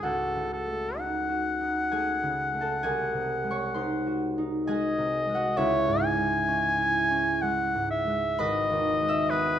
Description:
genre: classical, romantic duo for oboe and harp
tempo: 65 BPM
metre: 3/4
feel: rubato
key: C# minor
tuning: A4 = 440 Hz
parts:
  - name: clear oboe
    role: melody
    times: 0.0-9.6 s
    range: A4 to G#5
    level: -27 LUFS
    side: left 2 dB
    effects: none
  - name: concert harp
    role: accompaniment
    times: 0.0-9.6 s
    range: G#1 to E6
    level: -28 LUFS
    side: right 1 dB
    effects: none
room: moderate recital hall reverb, RT60 1.4 s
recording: none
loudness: -24 LUFS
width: side -10 dB against mid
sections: 0.0-9.6 A section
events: none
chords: 0.1 D#m7b5/C#; 2.9 G#7/B#; 5.6 C#m; 8.4 G#m

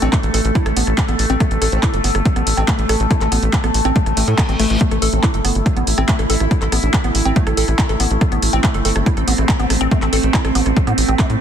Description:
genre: psychedelic trance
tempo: 141 BPM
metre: 4/4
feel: straight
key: A minor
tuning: A4 = 440 Hz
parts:
  - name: formant-sweep wobble bass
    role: second line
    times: 0.0-10.1 s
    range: E3 to E4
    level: -33 LUFS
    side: right 3 dB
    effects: none
  - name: overtone-sweeping drone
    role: sustained chords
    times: 0.0-11.4 s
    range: A3 to A4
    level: -22 LUFS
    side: equal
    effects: chorus, built-in reverb, sidechain pumping
  - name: woody wave-folded pluck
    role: riff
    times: 0.0-11.2 s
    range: A3 to A4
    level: -23 LUFS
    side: moving between left 8 dB and right 7 dB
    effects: chorus, auto-pan, sidechain pumping, digital delay
  - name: tight sequencer bass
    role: bass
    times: 0.0-11.4 s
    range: G1 to A2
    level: -18 LUFS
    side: equal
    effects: none
  - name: drum and bass drum kit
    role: drums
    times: 0.0-11.4 s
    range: handclaps, hi-hat, rim click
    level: -23 LUFS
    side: right 1 dB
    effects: none
  - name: electronic kick drum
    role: drums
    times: 0.1-11.3 s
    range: none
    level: -18 LUFS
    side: equal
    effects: overdrive
  - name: reverse cymbal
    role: sound effects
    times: 4.1-4.8 s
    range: none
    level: -29 LUFS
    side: left 2 dB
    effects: none
room: digital ambience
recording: dense, heavily limited modern master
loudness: -14 LUFS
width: side -9 dB against mid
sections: 0.0-11.4 A section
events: reverse cymbal 4.1-4.8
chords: 0.0 A5

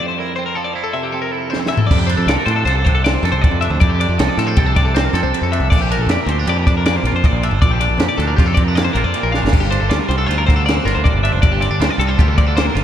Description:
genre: math rock and midwest emo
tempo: 158 BPM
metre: 5/4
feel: straight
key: F major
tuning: A4 = 441 Hz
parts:
  - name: twangy electric guitar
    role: accompaniment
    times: 0.0-12.8 s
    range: F2 to A4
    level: -22 LUFS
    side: right 7 dB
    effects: slapback echo
  - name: twelve-string electric guitar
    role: arpeggios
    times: 0.0-12.8 s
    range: G4 to F5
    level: -20 LUFS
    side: left 5 dB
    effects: digital delay, slapback echo
  - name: compact cocktail drum kit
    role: drums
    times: 1.5-12.8 s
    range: crash cymbal, kick drum, ride cymbal, snare drum, toms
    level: -17 LUFS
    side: equal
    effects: none
  - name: modern bright picked electric bass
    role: bass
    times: 1.9-12.8 s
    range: F1 to A2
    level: -18 LUFS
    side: equal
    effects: none
room: moderate lush hall reverb, RT60 1.8 s, small room ambience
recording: big arena sound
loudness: -14 LUFS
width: side -10 dB against mid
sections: 0.0-1.9 A section; 1.9-12.8 B section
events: break 0.0-1.9; drum fill 1.5-1.9, 9.3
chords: 0.0 Fmaj7; 1.9 F69; 5.7 Bb6; 9.5 Gm9

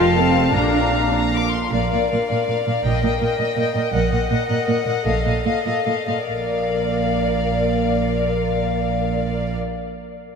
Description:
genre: quick classical-period movement for string orchestra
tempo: 93-112 BPM (dotted quarters)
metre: 6/8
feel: rubato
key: Bb major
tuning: A4 = 440 Hz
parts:
  - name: warm chamber violin section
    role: melody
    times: 0.0-9.6 s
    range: F5 to D6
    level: -26 LUFS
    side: left 7 dB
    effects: none
  - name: warm chamber violin section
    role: second line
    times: 0.0-9.6 s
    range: D5 to F5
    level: -24 LUFS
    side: left 2 dB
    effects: none
  - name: dark symphonic viola section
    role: accompaniment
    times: 0.0-9.5 s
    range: C4 to Bb4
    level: -23 LUFS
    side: left 2 dB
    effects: none
  - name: rich symphonic double bass section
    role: bass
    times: 0.0-9.6 s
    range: F1 to Bb1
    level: -24 LUFS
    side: right 3 dB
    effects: none
  - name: warm symphonic cello section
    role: bass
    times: 0.0-9.6 s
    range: F2 to Bb2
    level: -25 LUFS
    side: right 5 dB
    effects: none
room: wet cathedral reverb, RT60 5.4 s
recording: in a vast, echoing space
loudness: -18 LUFS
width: side -6 dB against mid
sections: 0.0-1.7 A section; 1.7-6.3 B section; 6.3-8.8 C section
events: slowing down 3.4-6.3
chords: 0.0 F; 0.6 Bb; 5.1 F7/Bb; 6.3 Bb

